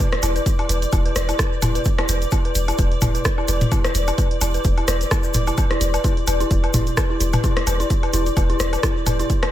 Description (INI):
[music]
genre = minimal techno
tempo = 129 BPM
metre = 4/4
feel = swing 56% on 16ths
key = unclear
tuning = A4 = 439 Hz
[part]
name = dark detuned synth bell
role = riff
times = 0.0-9.4 s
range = E4 to B4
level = -26 LUFS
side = left 1 dB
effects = chorus, sidechain pumping, dub echo
[part]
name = punchy analog drum machine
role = drums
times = 0.0-9.5 s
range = hi-hat, rim click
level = -28 LUFS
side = right 2 dB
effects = tape echo
[part]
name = granular cloud pad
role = texture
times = 0.0-9.5 s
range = D5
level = -28 LUFS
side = left 1 dB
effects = built-in reverb, sidechain pumping
[part]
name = organic electronic drum kit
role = percussion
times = 0.1-9.5 s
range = rim click, toms, woodblock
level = -25 LUFS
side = left 2 dB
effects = dub echo
[part]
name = punchy sub bass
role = bass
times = 0.2-9.2 s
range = E1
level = -23 LUFS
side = equal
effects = sidechain pumping
[part]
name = egg shaker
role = percussion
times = 0.2-9.4 s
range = none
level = -32 LUFS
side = left 3 dB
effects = tape echo
[part]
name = electronic kick drum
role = drums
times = 0.5-9.4 s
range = none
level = -20 LUFS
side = equal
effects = none
[sound]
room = digital ambience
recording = echo-heavy mix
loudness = -17 LUFS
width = side -12 dB against mid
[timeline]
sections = 0.0-9.5 A section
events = none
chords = 0.0 E7(no3)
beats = | 0.00 0.46 0.93 1.39 | 1.86 2.32 2.79 3.25 | 3.72 4.18 4.65 5.11 | 5.58 6.04 6.51 6.97 | 7.44 7.90 8.37 8.83 | 9.30